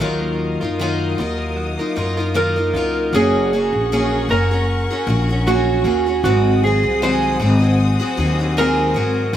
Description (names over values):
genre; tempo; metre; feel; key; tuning
acoustic pop; 77 BPM; 4/4; swing 55% on 16ths; Eb minor; A4 = 438 Hz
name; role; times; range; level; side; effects
picked steel-string acoustic guitar; accompaniment; 0.0-9.4 s; Ab2 to Bb4; -21 LUFS; left 1 dB; slapback echo
warm studio string section; sustained chords; 0.0-9.4 s; Bb4 to Eb6; -30 LUFS; left 4 dB; none
direct-recorded clean electric guitar; arpeggios; 0.0-3.7 s; Gb3 to F4; -30 LUFS; right 2 dB; slapback echo
upright bass; bass; 0.0-9.4 s; Gb1 to Gb2; -20 LUFS; left 1 dB; none
electric slide guitar; melody; 2.4-9.4 s; Gb4 to C5; -20 LUFS; right 3 dB; slapback echo
room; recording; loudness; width
little or no reverb; recorded outdoors, with no room sound; -15 LUFS; side -10 dB against mid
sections
0.0-3.1 A section; 3.1-9.4 B section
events
none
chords
0.0 Ebmadd9; 3.1 Gbadd9; 6.2 Ab7